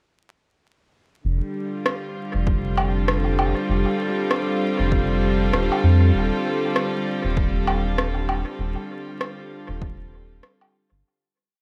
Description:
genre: ambient dub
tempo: 98 BPM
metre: 4/4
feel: swing 60% on 16ths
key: F mixolydian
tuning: A4 = 441 Hz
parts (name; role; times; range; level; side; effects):
- warm chamber string section; sustained chords; 1.2-11.0 s; D3 to A4; -26 LUFS; equal; none
- round analog bass; bass; 1.2-11.0 s; Eb1 to F2; -24 LUFS; equal; tube saturation
- electronic rim click and woodblock; drums; 1.9-10.7 s; none; -28 LUFS; equal; overdrive, dub echo
- electronic kick drum; drums; 2.5-10.0 s; none; -28 LUFS; equal; overdrive
room: light reverb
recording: vinyl crackle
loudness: -22 LUFS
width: mono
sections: 1.2-11.0 groove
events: fade-out 7.8-11.0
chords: 1.2 F7

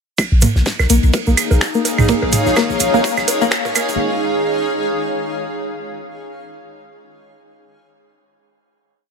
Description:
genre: minimal techno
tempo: 126 BPM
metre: 4/4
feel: swing 57% on 16ths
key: Bb minor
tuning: A4 = 440 Hz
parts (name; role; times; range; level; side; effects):
- damped 70s drum kit; drums; 0.2-4.0 s; ride cymbal, snare drum; -27 LUFS; right 3 dB; high-pass filter on cymbals, high-pass filter on snare, high-pass filter on room
- electronic kick drum; drums; 0.2-3.6 s; none; -20 LUFS; equal; overdrive, high-pass filter on kick
- electronic claves, toms and bongos; percussion; 0.2-3.9 s; none; -20 LUFS; right 3 dB; overdrive, ping-pong delay
- tube shaker; percussion; 0.2-4.0 s; none; -27 LUFS; right 4 dB; none
- granular cloud pad; texture; 1.0-4.0 s; Eb4 to F5; -19 LUFS; equal; built-in reverb, sidechain pumping
- punchy sub bass; bass; 0.3-4.0 s; Bb1; -16 LUFS; equal; sidechain pumping
- string-like resonator pluck; riff; 0.4-3.8 s; Bb3; -20 LUFS; left 1 dB; chorus, sidechain pumping, ping-pong delay
- minimal click drum kit; drums; 0.4-3.9 s; finger snaps, hi-hat; -19 LUFS; right 2 dB; none
room: moderate plate reverb, RT60 1.2 s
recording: high-pass filter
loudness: -14 LUFS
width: side -6 dB against mid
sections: 0.2-4.0 build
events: build-up 0.2-4.0; filter sweep on synth pluck 0.2-4.0; filter sweep 0.2-4.0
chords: 0.2 Bbm

